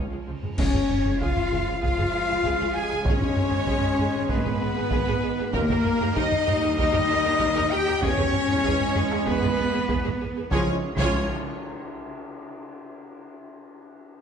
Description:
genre	cinematic, epic orchestral film score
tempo	97 BPM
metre	4/4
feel	straight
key	Db mixolydian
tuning	A4 = 439 Hz
part	rich studio violin section	melody	0.0-11.3 s	Bb4 to Ab5	-36 LUFS	left 3 dB	none
part	hollow concert flute	second line	0.0-11.3 s	Bb4 to Ab5	-33 LUFS	left 1 dB	none
part	rich chamber violin section	second line	0.0-11.3 s	Bb4 to Ab5	-35 LUFS	left 3 dB	none
part	rich symphonic viola section	accompaniment	0.0-11.3 s	F3 to Bb4	-34 LUFS	right 3 dB	none
part	mellow French horn section	sustained chords	0.0-10.8 s	Bb3 to Ab4	-27 LUFS	left 5 dB	none
part	clear symphonic double bass section	bass	0.0-11.3 s	Ab1 to E2	-32 LUFS	right 4 dB	none
part	rich studio cello section	bass	0.1-11.3 s	Db2 to Ab4	-31 LUFS	right 2 dB	none
part	taiko ensemble	drums	0.4-12.2 s	none	-28 LUFS	right 1 dB	none
part	mellow trombone section	sustained chords	0.6-10.8 s	Eb3 to G#3	-34 LUFS	right 5 dB	none
part	mellow trumpet section	stabs	0.6-11.2 s	Bb4 to Ab5	-30 LUFS	left 1 dB	none
part	clash cymbals, concert bass drum and tam-tam	percussion	0.6-1.8, 10.5-13.4 s	none	-34 LUFS	equal	none
part	timpani	percussion	3.1-4.0, 10.5-11.3 s	Ab2 to Db3	-34 LUFS	equal	none
room	wet scoring stage reverb, RT60 2.0 s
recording	nothing above 10.8 kHz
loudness	-21 LUFS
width	side -7 dB against mid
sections	0.6-10.5 A section; 10.5-13.0 B section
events	band accent 0.6-1.2, 10.5-11.1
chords	0.0 Db; 3.1 Abm; 5.5 Eb; 8.0 E; 10.5 Db

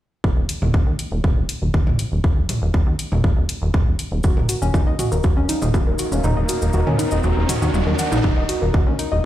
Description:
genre	melodic techno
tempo	120 BPM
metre	4/4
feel	straight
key	Eb minor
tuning	A4 = 440 Hz
part	plucky analog bass	bass	0.2-9.2 s	Eb1 to Eb2	-21 LUFS	equal	sidechain pumping
part	electronic kick drum	drums	0.2-8.8 s	none	-18 LUFS	equal	none
part	house drum kit	drums	0.5-9.1 s	hi-hat, toms	-24 LUFS	equal	sidechain pumping on hats, sidechain pumping on toms
part	deep dark ambient pad	sustained chords	5.1-9.3 s	Eb4 to F5	-29 LUFS	left 2 dB	chorus, built-in reverb, sidechain pumping
part	woody wave-folded pluck	arpeggios	4.2-9.2 s	Db4 to Gb5	-24 LUFS	equal	chorus, sidechain pumping, ping-pong delay
part	cabasa	percussion	4.2-8.2 s	none	-32 LUFS	left 1 dB	none
part	riser	sound effects	5.1-8.2 s	none	-29 LUFS	equal	none
room	digital ambience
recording	played on a big sound system in a bare room, large studio reverb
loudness	-17 LUFS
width	side -13 dB against mid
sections	0.2-8.2 A section; 8.2-9.3 B section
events	filter sweep on analog synth bass 0.2-8.2; riser 5.1-8.2; kick drops out 6.2-8.2; drum fill 7.7-8.2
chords	0.2 Ebm

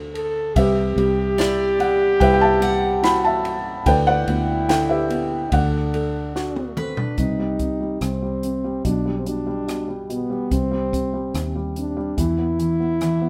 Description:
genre	acoustic folk-pop ballad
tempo	72 BPM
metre	4/4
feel	straight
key	unclear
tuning	A4 = 441 Hz
part	felt-muted upright piano	melody	0.0-13.3 s	B2 to B5	-25 LUFS	equal	none
part	fingered electric bass	bass	0.0-13.3 s	B1 to E2	-28 LUFS	equal	none
part	warm French horn	second line	0.1-13.3 s	B3 to A4	-26 LUFS	equal	none
part	compact cocktail drum kit	drums	0.2-13.2 s	hi-hat, kick drum, ride cymbal, rim click, snare drum, toms	-30 LUFS	equal	none
part	picked steel-string acoustic guitar	arpeggios	1.4-7.6 s	B4 to F#5	-32 LUFS	equal	none
room	moderate studio reverb, RT60 1.0 s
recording	none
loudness	-21 LUFS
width	mono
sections	0.0-7.2 A section; 7.2-13.3 B section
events	drum fill 6.4-7.2; French horn solo 7.2-13.3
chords	0.0 D7; 0.6 Cmaj7; 3.9 G/D; 5.5 D; 7.2 Cm; 8.8 G/B; 10.5 C5; 12.2 E5

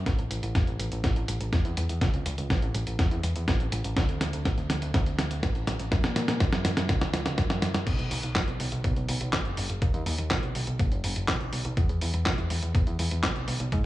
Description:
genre	italo disco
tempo	123 BPM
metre	4/4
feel	straight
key	A major, B major from 7.9 s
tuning	A4 = 445 Hz
part	overdriven picked electric bass	bass	0.0-13.8 s	E1 to A#2	-29 LUFS	equal	none
part	dusty soul sampler-style drum kit	drums	0.1-13.8 s	crash cymbal, handclaps, hi-hat, snare drum	-30 LUFS	equal	none
part	electronic kick drum	drums	0.1-13.8 s	none	-27 LUFS	equal	none
room	little or no reverb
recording	small room ambience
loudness	-25 LUFS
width	side -16 dB against mid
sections	0.1-7.9 A section; 7.9-13.9 B section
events	drum fill 0.1-7.9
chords	none

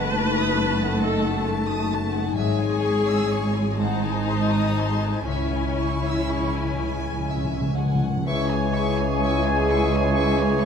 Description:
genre	classical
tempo	39-45 BPM (dotted quarters)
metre	6/8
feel	rubato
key	C# minor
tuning	A4 = 441 Hz
part	rich chamber violin section	melody	0.0-10.7 s	G#5 to C#6	-33 LUFS	left 5 dB	none
part	rich chamber violin section	second line	0.0-10.6 s	B#4 to E6	-32 LUFS	equal	none
part	rich chamber viola section	accompaniment	0.0-10.7 s	C#4 to B4	-28 LUFS	left 2 dB	none
part	concert harp	arpeggios	0.0-10.7 s	F#2 to G#5	-29 LUFS	left 11 dB	none
part	clear studio double bass section	bass	0.0-10.7 s	F#1 to C#2	-27 LUFS	right 2 dB	none
part	warm symphonic cello section	bass	0.0-10.7 s	C#2 to E4	-27 LUFS	right 2 dB	none
part	timpani	percussion	5.3-8.2 s	C#3	-28 LUFS	left 2 dB	none
part	bright large flute ensemble	second line	8.3-10.7 s	G#5	-30 LUFS	left 7 dB	none
part	warm clarinet	second line	8.3-10.7 s	G#4	-30 LUFS	left 4 dB	none
part	warm oboe	second line	8.3-10.7 s	C#5	-32 LUFS	right 2 dB	none
part	mellow bassoon	accompaniment	8.3-10.7 s	E3	-29 LUFS	right 6 dB	none
part	warm French horn section	sustained chords	8.3-10.7 s	C#4 to E4	-29 LUFS	left 5 dB	none
part	warm trombone section	sustained chords	8.3-10.7 s	C#3 to G#3	-31 LUFS	right 6 dB	none
part	clear trumpet	stabs	8.3-10.7 s	G#4	-30 LUFS	left 1 dB	none
room	light reverb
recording	close, detailed microphones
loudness	-20 LUFS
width	side -7 dB against mid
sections	0.0-8.3 A section; 8.3-10.7 B section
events	timpani fill 5.3-8.3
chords	0.0 D#dim/F#; 2.4 C#m/G#; 3.8 G#7b9; 5.3 C#m

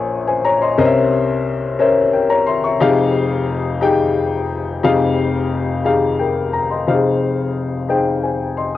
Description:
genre	gospel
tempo	59 BPM (dotted quarters)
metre	6/8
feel	straight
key	F minor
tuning	A4 = 440 Hz
part	warm upright piano	solo	0.0-8.8 s	F1 to Db6	-15 LUFS	left 3 dB	cassette tape
room	moderate booth ambience, RT60 0.2 s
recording	home recording on cassette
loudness	-15 LUFS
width	side -13 dB against mid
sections	0.0-4.8 A section; 4.8-6.9 B section; 6.9-8.8 C section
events	none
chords	0.0 Bbm9; 0.8 C7b9; 2.8 Fm9; 6.9 Fm7

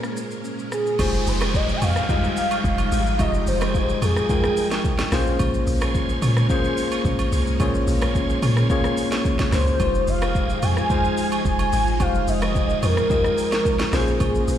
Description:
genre	amapiano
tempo	109 BPM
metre	4/4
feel	straight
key	F minor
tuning	A4 = 440 Hz
part	warm velvety synth lead	melody	0.0-5.1, 9.5-14.6 s	Ab4 to Ab5	-25 LUFS	equal	chorus, digital delay
part	bell-like tine electric piano	accompaniment	0.0-14.6 s	G3 to G5	-26 LUFS	left 3 dB	none
part	string machine, full ensemble	sustained chords	0.0-14.6 s	Bb2 to G5	-30 LUFS	right 1 dB	ensemble chorus, sidechain pumping
part	afro-pop drum kit	drums	0.0-14.6 s	crash cymbal, hi-hat, kick drum, rim click, shaker, snare drum	-25 LUFS	equal	none
part	deep log drum bass	bass	1.0-14.6 s	F1 to Bb2	-22 LUFS	equal	none
part	agogo bells	percussion	1.0-14.3 s	none	-34 LUFS	right 6 dB	none
part	downlifter	sound effects	1.0-5.4 s	none	-33 LUFS	equal	none
part	bright tonewheel organ	stabs	1.4-14.0 s	Db4 to G5	-32 LUFS	right 3 dB	chorus vibrato, stopped rotary speaker, digital delay
room	light reverb, digital ambience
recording	played on a big sound system in a bare room, stone room reverb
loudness	-19 LUFS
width	side -10 dB against mid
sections	1.0-14.6 A section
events	drop 1.0-14.6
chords	0.0 Bbm9; 1.0 Fm9; 5.1 Bbm9; 9.8 Fm9; 13.9 Bbm9

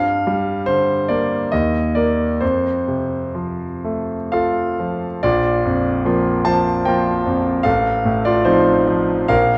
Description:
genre	classical, romantic character piece for solo piano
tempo	58-77 BPM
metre	3/4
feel	rubato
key	Bb major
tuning	A4 = 441 Hz
part	clear concert grand piano	solo	0.0-9.6 s	A1 to A5	-18 LUFS	equal	none
room	wet recital hall reverb, RT60 1.6 s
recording	dark, warm production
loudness	-18 LUFS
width	mono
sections	0.0-5.2 A section; 5.2-9.6 B section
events	none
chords	0.0 Gm7; 1.5 Eb5; 2.4 F; 5.2 Bb; 7.6 F7/A

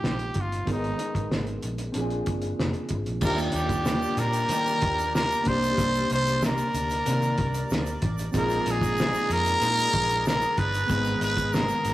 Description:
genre	indie pop, bedroom pop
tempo	94 BPM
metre	4/4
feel	straight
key	Eb major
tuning	A4 = 440 Hz
part	growling trumpet	melody	0.0-11.9 s	Eb4 to C5	-26 LUFS	equal	none
part	mellow electric guitar	accompaniment	0.0-11.9 s	Ab2 to Bb4	-34 LUFS	left 2 dB	vibrato effect
part	mellow tine electric piano	accompaniment	0.0-11.9 s	Ab3 to Bb5	-33 LUFS	right 1 dB	medium stereo tremolo
part	vintage muted fingered electric bass	bass	0.0-11.9 s	F1 to Eb3	-31 LUFS	equal	none
part	cloth-damped thuddy drum kit	drums	0.0-11.9 s	crash cymbal, hi-hat, kick drum, snare drum	-30 LUFS	equal	none
part	accordion	sustained chords	3.2-11.9 s	Cb4 to D6	-36 LUFS	right 2 dB	light tremolo tuning
part	tube shaker	percussion	3.2-11.9 s	none	-46 LUFS	right 3 dB	none
room	moderate stone room reverb, RT60 1.2 s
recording	rough rehearsal-room recording, tube saturation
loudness	-23 LUFS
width	side -15 dB against mid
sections	0.0-3.2 A section; 3.2-11.9 B section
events	none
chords	0.0 Bb7sus4; 0.7 Abmadd9; 2.0 Bb7; 3.2 Ebmaj7; 5.5 Cm9; 8.3 Bb7sus4; 10.9 Abmadd9

